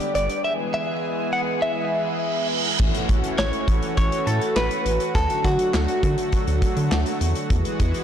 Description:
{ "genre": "synth-pop", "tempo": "102 BPM", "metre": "4/4", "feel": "straight", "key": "A major", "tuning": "A4 = 440 Hz", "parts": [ { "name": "direct-recorded clean electric guitar", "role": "melody", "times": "0.0-7.2 s", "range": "F#4 to F#5", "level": "-24 LUFS", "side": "equal", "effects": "phaser, ping-pong delay" }, { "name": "lush unison pad", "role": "sustained chords", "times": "0.0-8.0 s", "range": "D3 to G#4", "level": "-26 LUFS", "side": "equal", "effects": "chorus" }, { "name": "modern studio drum kit", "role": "drums", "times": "0.0-8.0 s", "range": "crash cymbal, handclaps, hi-hat, kick drum, snare drum", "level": "-24 LUFS", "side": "equal", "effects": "none" }, { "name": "rubbery square bass", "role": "bass", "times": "0.2-7.9 s", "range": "G1 to D3", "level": "-23 LUFS", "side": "equal", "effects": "none" }, { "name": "reverse cymbal and impact", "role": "sound effects", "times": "2.0-5.2 s", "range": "none", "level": "-28 LUFS", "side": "right 4 dB", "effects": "none" } ], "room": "light reverb, studio reverb", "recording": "blown-out, overdriven recording, overdrive", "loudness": "-20 LUFS", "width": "side -9 dB against mid", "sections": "0.0-2.8 A section; 2.8-8.0 B section", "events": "reverse cymbal 2.0-2.8; impact 2.8-5.2", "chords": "0.4 E; 2.8 A6; 5.2 D; 7.5 Eadd9", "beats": "| 0.44 1.03 1.62 2.21 | 2.80 3.39 3.97 4.56 | 5.15 5.74 6.33 6.92 | 7.50" }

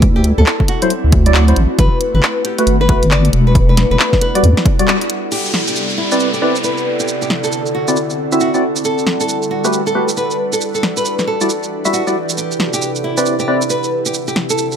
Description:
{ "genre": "UK garage, two-step garage", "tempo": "136 BPM", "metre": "4/4", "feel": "swing 62% on 16ths", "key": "E minor", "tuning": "A4 = 440 Hz", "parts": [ { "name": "nylon-string guitar", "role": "melody", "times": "0.0-14.7 s", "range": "E4 to D5", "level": "-21 LUFS", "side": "left 1 dB", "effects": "dub echo" }, { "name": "ethereal airy pad", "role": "sustained chords", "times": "0.0-14.8 s", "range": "C3 to C5", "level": "-24 LUFS", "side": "equal", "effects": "ensemble chorus, built-in reverb, phaser, sidechain pumping" }, { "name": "deep soft wobble bass", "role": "bass", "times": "0.0-4.5 s", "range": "E1 to E2", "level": "-12 LUFS", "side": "equal", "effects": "chorus" }, { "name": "electronic kick drum", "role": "drums", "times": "0.0-4.8 s", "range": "none", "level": "-14 LUFS", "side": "equal", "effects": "overdrive" }, { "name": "garage drum kit", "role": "drums", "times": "0.0-14.8 s", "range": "crash cymbal, handclaps, hi-hat, shaker, snare drum", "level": "-19 LUFS", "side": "right 1 dB", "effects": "none" }, { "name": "warbly tape-like pad", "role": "texture", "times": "0.0-14.8 s", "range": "C3 to F#5", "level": "-24 LUFS", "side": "right 1 dB", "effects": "chorus, built-in reverb, phaser, sidechain pumping" }, { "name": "percussive organ stab", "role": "stabs", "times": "0.8-13.6 s", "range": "F#3 to E5", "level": "-17 LUFS", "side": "equal", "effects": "lush chorus, digital delay" }, { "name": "downlifter", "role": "sound effects", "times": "5.3-8.8 s", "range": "none", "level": "-24 LUFS", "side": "equal", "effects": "none" } ], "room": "light reverb, digital ambience", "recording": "none", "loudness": "-12 LUFS", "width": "side -8 dB against mid", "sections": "0.0-5.3 A section; 5.3-14.8 B section", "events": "filter sweep on synth stab 0.0-5.3; band accent 4.9", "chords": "0.0 D9; 1.8 Em9; 5.3 Cmaj9; 6.9 D9; 8.8 Gmaj9; 10.6 Em9; 12.4 Cmaj9; 13.9 D9", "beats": "| 0.02 0.47 0.91 1.35 | 1.79 2.23 2.67 3.11 | 3.55 3.99 4.44 4.88 | 5.32 5.76 6.20 6.64 | 7.08 7.52 7.96 8.41 | 8.85 9.29 9.73 10.17 | 10.61 11.05 11.49 11.94 | 12.38 12.82 13.26 13.70 | 14.14 14.58" }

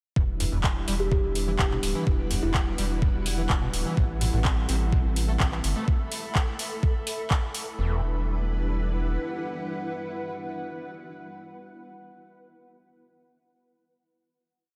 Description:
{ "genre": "acid house", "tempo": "126 BPM", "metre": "4/4", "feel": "straight", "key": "E minor", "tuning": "A4 = 440 Hz", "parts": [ { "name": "string machine, full ensemble", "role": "sustained chords", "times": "0.2-11.4 s", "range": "G3 to B4", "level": "-38 LUFS", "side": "equal", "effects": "ensemble chorus, sidechain pumping" }, { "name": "overdriven acid bass", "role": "riff", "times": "0.2-8.0 s", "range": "E2 to C4", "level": "-36 LUFS", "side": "equal", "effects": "distortion, ensemble chorus, cassette tape, diffuse ambient delay" }, { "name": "round analog bass", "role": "bass", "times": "0.2-9.2 s", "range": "D1 to A1", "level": "-30 LUFS", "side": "equal", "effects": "sidechain pumping" }, { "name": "electronic kick drum", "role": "drums", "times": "0.2-7.4 s", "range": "none", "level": "-27 LUFS", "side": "equal", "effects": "overdrive" }, { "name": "granular cloud pad", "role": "texture", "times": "2.0-11.5 s", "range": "E4 to B5", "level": "-39 LUFS", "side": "equal", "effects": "built-in reverb, lush chorus, sidechain pumping" }, { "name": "booming analog drum machine", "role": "drums", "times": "0.4-7.6 s", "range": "handclaps, hi-hat", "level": "-34 LUFS", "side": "equal", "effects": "none" }, { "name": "kalimba", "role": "melody", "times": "1.0-2.8 s", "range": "E4 to G4", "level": "-36 LUFS", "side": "equal", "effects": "diffuse ambient delay" } ], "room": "moderate church reverb, RT60 3.3 s", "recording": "dreamy mix soaked in reverb", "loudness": "-27 LUFS", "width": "mono", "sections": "0.2-7.8 groove; 7.8-11.6 final chord", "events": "none", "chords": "0.2 Em7; 4.0 Am7; 7.8 Em7", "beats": "| 0.16 0.64 1.12 1.59 | 2.07 2.54 3.02 3.50 | 3.97 4.45 4.92 5.40 | 5.88 6.35 6.83 7.31 | 7.78 8.26 8.73 9.21 | 9.69 10.16 10.64 11.12" }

